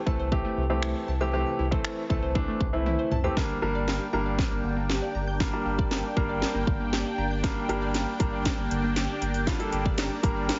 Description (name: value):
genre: dance-pop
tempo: 118 BPM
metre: 4/4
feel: straight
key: G dorian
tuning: A4 = 440 Hz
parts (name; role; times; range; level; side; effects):
- clear baby grand piano; accompaniment; 0.1-10.6 s; E3 to Bb4; -32 LUFS; equal; sidechain pumping
- glassy wavetable pluck; arpeggios; 0.1-10.5 s; C3 to G6; -37 LUFS; equal; chorus, sidechain pumping, digital delay
- warm sub bass; bass; 0.1-10.5 s; G1 to C2; -34 LUFS; equal; sidechain pumping
- house drum kit; drums; 0.1-10.6 s; finger snaps, hi-hat, kick drum, snare drum, toms; -31 LUFS; equal; none
- supersaw pad; sustained chords; 3.4-10.6 s; Bb3 to G5; -36 LUFS; equal; phaser, sidechain pumping
room: light reverb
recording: heavily compressed radio sound, nothing above 7.6 kHz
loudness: -27 LUFS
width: mono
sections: 0.0-3.4 A section; 3.4-10.6 B section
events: drum fill 2.9-3.4, 3.4-10.6; build-up 3.4-10.6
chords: 0.0 C6; 3.4 Gm